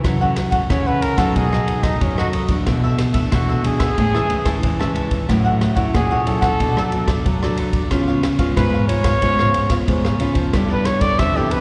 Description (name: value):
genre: samba and choro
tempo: 92 BPM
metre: 4/4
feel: straight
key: F# minor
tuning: A4 = 439 Hz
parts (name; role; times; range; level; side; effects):
- cavaquinho; accompaniment; 0.0-11.6 s; D4 to A5; -29 LUFS; equal; slapback echo
- nylon-string guitar; accompaniment; 0.0-11.6 s; F#2 to A4; -26 LUFS; equal; slapback echo
- nylon-string guitar; bass; 0.0-11.6 s; E#2 to F#3; -24 LUFS; equal; none
- open jazz drum kit; drums; 0.0-11.6 s; kick drum, ride cymbal, rim click; -24 LUFS; equal; none
- breathy trumpet; melody; 0.7-11.6 s; C#4 to E5; -25 LUFS; equal; slapback echo
room: light reverb, small room ambience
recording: live gig heard through the venue's PA, recital hall reverb, nothing above 10.4 kHz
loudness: -18 LUFS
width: mono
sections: 0.0-11.6 A section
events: trumpet solo 0.0-11.6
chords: 0.0 F#m7; 1.4 B7; 2.7 E7sus4/B; 4.0 Amaj7; 5.3 F#m7/A; 6.6 Bm7; 7.9 C#7; 10.5 G69